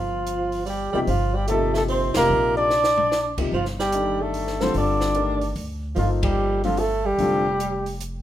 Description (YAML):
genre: modal jazz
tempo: 147 BPM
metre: 3/4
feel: swing 66% on 8ths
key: G minor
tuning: A4 = 442 Hz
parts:
  - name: trumpet with bucket mute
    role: melody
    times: 0.0-8.0 s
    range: F4 to D5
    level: -23 LUFS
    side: equal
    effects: none
  - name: breathy tenor saxophone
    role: second line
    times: 0.0-8.0 s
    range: F3 to D4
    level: -28 LUFS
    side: right 4 dB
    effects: none
  - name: upright bass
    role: bass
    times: 0.0-8.2 s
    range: F1 to D2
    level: -28 LUFS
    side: equal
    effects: none
  - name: compact cocktail drum kit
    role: drums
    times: 0.3-8.1 s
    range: crash cymbal, hi-hat, kick drum, ride cymbal, snare drum, toms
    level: -32 LUFS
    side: equal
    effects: none
  - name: warm concert grand piano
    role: accompaniment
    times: 0.9-7.4 s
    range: C3 to D5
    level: -26 LUFS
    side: left 4 dB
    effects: none
room: light reverb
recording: minimal, uncompressed stereo recording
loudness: -20 LUFS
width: side -12 dB against mid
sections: 0.0-8.2 A section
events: band accent 2.1, 6.2; drum fill 2.7-3.1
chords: 0.0 Gm9; 7.2 Fadd9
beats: 0.26 0.67 | 1.08 1.49 1.90 | 2.30 2.71 3.12 | 3.53 3.93 4.34 | 4.75 5.16 5.56 | 5.97 6.38 6.79 | 7.19 7.60 8.01